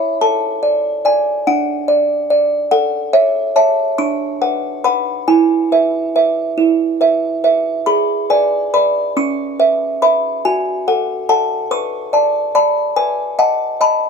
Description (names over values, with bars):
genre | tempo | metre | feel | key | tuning
classical, lullaby for music box | 47 BPM (dotted quarters) | 6/8 | rubato | unclear | A4 = 439 Hz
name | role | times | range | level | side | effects
music box | solo | 0.0-14.1 s | C#4 to C#6 | -13 LUFS | right 1 dB | none
room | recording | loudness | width
light reverb | dark, warm production | -13 LUFS | side -5 dB against mid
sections
0.0-14.1 A section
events
none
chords
0.2 D/A; 2.7 A; 4.0 Bm/D; 5.3 E; 7.9 G#dim; 9.2 C#m7; 10.4 F#m; 11.7 Bm7; 13.0 B7